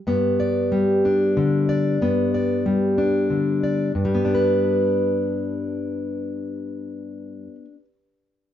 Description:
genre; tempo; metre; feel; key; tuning
folk; 62 BPM (dotted quarters); 6/8; straight; G major; A4 = 440 Hz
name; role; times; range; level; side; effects
fingerpicked plugged-in steel-string acoustic guitar; accompaniment; 0.1-7.8 s; G2 to D5; -20 LUFS; left 1 dB; none
room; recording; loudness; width
wet studio reverb, RT60 0.5 s; band playing live in one room, nothing above 7.5 kHz; -19 LUFS; side -10 dB against mid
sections
0.1-3.9 A section; 3.9-7.8 B section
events
none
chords
0.1 G

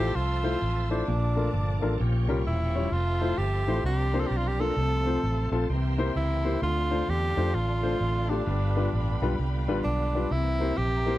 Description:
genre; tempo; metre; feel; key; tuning
uptempo gospel; 130 BPM; 4/4; swing 62% on 8ths; F major; A4 = 440 Hz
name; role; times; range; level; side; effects
breathy tenor saxophone; melody; 0.0-11.2 s; D4 to A4; -30 LUFS; right 1 dB; none
warm grand piano; accompaniment; 0.0-11.2 s; G2 to Db5; -30 LUFS; left 3 dB; none
bright tonewheel organ; sustained chords; 0.0-11.2 s; D3 to E5; -37 LUFS; right 4 dB; fast rotary speaker, overdrive, chorus vibrato
dark studio string section; sustained chords; 0.0-11.2 s; C5 to E6; -41 LUFS; equal; none
vintage muted fingered electric bass; bass; 0.0-11.2 s; E1 to F2; -28 LUFS; right 1 dB; none
room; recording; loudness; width
little or no reverb; dry, close 1970s-style studio recording; -24 LUFS; side -15 dB against mid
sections
0.0-11.2 A section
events
none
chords
0.0 Fmaj7; 1.1 Bbmaj7; 2.0 Bbm6; 2.9 Fmaj7; 3.8 C9sus4; 4.8 F/C; 5.7 C7; 6.6 Dm7; 8.5 G7; 10.3 C7

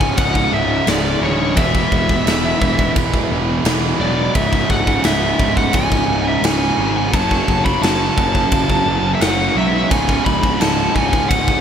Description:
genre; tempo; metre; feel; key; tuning
heavy metal; 86 BPM; 4/4; straight; C# phrygian; A4 = 438 Hz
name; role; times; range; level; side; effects
high-gain lead guitar; melody; 0.0-11.6 s; C#5 to B5; -20 LUFS; left 1 dB; distortion, digital delay
high-gain lead guitar; second line; 0.0-11.6 s; E3 to D4; -26 LUFS; right 3 dB; distortion
tight distorted guitar; riff; 0.0-11.6 s; C#2 to F#3; -24 LUFS; left 10 dB; distortion
tight distorted guitar; riff; 0.0-11.6 s; C#2 to F#3; -22 LUFS; right 10 dB; distortion
fuzz picked electric bass; bass; 0.0-11.6 s; C#1 to B1; -21 LUFS; equal; overdrive
big rock drum kit; drums; 0.0-11.6 s; crash cymbal, kick drum, snare drum; -19 LUFS; equal; gated reverb
room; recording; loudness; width
moderate lush hall reverb, RT60 2.5 s; bright 1980s-style digital production; -14 LUFS; side -8 dB against mid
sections
0.0-11.6 A section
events
none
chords
0.0 C#5; 1.6 E; 4.4 C#5; 7.1 F#m; 9.9 C#5

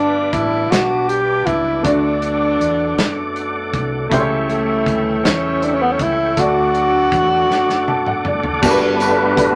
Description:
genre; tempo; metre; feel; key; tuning
slow gospel; 53 BPM (dotted quarters); 6/8; straight; G major; A4 = 439 Hz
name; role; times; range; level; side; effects
breathy tenor saxophone; melody; 0.0-8.3 s; A3 to G4; -19 LUFS; equal; none
clear grand piano; accompaniment; 0.0-9.6 s; G2 to A5; -24 LUFS; equal; none
mellow French horn section; sustained chords; 0.0-8.6 s; B2 to D4; -30 LUFS; equal; none
tonewheel organ; sustained chords; 0.0-9.6 s; G3 to D6; -25 LUFS; equal; fast rotary speaker, chorus vibrato
fingered electric bass; bass; 0.0-9.6 s; F#1 to F#2; -30 LUFS; equal; none
natural country drum kit; drums; 0.3-9.6 s; crash cymbal, hi-hat, kick drum, snare drum, toms; -24 LUFS; equal; none
tambourine; percussion; 8.6-9.4 s; none; -33 LUFS; equal; none
room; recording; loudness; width
wet club reverb, RT60 0.5 s; none; -17 LUFS; mono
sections
0.0-8.6 A section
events
drum fill 7.5-8.6; grand piano fill 7.5-8.6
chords
0.0 G; 1.8 D; 4.1 A7/C#; 6.4 D; 8.6 Gmaj7

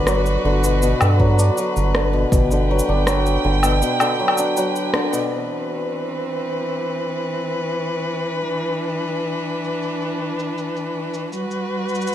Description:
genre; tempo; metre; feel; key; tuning
folktronica; 80 BPM; 4/4; straight; C lydian; A4 = 441 Hz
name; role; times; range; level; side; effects
dark string quartet; sustained chords; 0.0-12.1 s; E3 to G5; -24 LUFS; equal; vintage 12-bit sampler grit
hammered dulcimer; arpeggios; 0.0-8.1 s; B2 to D4; -22 LUFS; left 1 dB; ping-pong delay
round analog bass; bass; 0.0-3.8 s; G1 to G2; -18 LUFS; right 1 dB; tube saturation
electronic rim click, cabasa and woodblock; drums; 0.1-12.1 s; none; -23 LUFS; left 1 dB; low-pass filter on perc, low-pass filter on snare, low-pass filter on room
electronic kick drum; drums; 1.2-2.5 s; none; -20 LUFS; equal; none
room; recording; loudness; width
light reverb; none; -18 LUFS; side -11 dB against mid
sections
0.0-5.3 A section; 5.3-12.1 B section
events
band accent 5.0-5.3; filter sweep on drum 5.3-12.1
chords
0.0 Gmaj7; 5.3 Cmaj7; 11.3 Gmaj7

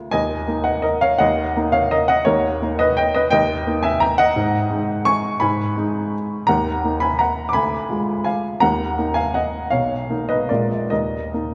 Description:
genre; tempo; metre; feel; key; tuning
classical, piano waltz; 135-182 BPM; 3/4; rubato; Eb minor; A4 = 441 Hz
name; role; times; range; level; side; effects
clear upright piano; solo; 0.0-11.5 s; Bb1 to D6; -20 LUFS; equal; none
room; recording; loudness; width
wet church reverb, RT60 3.3 s; recorded in a church or concert hall; -20 LUFS; mono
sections
0.0-11.5 A section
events
none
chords
0.1 Ebm; 2.3 Eb7; 4.4 Abm7; 6.5 Ebm; 7.5 Ddim7; 8.6 Ebm; 9.7 Bmaj7; 10.5 Bb7; 10.9 Eb5

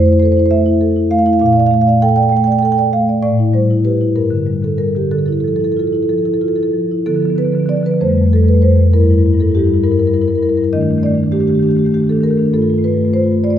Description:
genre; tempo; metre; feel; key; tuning
classical, contemporary piece for solo marimba; 61-68 BPM (dotted quarters); 6/8; rubato; unclear; A4 = 439 Hz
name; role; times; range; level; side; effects
marimba with soft mallets; solo; 0.0-13.6 s; F2 to G5; -11 LUFS; equal; none
room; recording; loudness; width
wet recital hall reverb, RT60 1.3 s; heard from further back in the room; -12 LUFS; side -10 dB against mid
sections
0.0-7.1 A section; 7.1-13.6 B section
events
none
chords
0.0 Fmaj7; 1.4 Bbmaj7; 3.2 A5; 4.2 Gm; 5.1 Dmadd9; 7.1 Dm6; 8.0 Fadd9; 8.9 Gm6; 10.7 Ebmaj7#11; 12.5 Gsus2

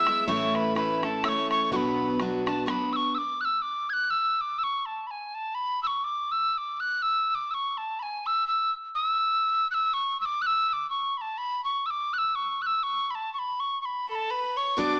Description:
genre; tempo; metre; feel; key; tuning
celtic folk, Celtic waltz; 124 BPM; 3/4; swing 56% on 8ths; B dorian; A4 = 441 Hz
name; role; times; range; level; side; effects
breathy mellow tin whistle; melody; 0.0-15.0 s; G#5 to G#6; -28 LUFS; equal; none
bright fiddle; second line; 0.0-2.7, 14.1-15.0 s; A4 to E5; -37 LUFS; equal; none
picked steel-string acoustic guitar; accompaniment; 0.0-3.2, 14.8-15.0 s; A2 to F#4; -31 LUFS; equal; none
bodhran; percussion; 0.1-2.8, 14.8-14.9 s; none; -38 LUFS; equal; none
upright bass; bass; 0.3-2.6 s; A1 to B1; -42 LUFS; equal; none
room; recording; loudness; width
moderate recital hall reverb, RT60 1.4 s; small speaker sound; -28 LUFS; mono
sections
0.0-3.2 A section; 3.2-14.8 B section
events
none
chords
0.3 A; 1.7 Bm; 3.2 N.C.

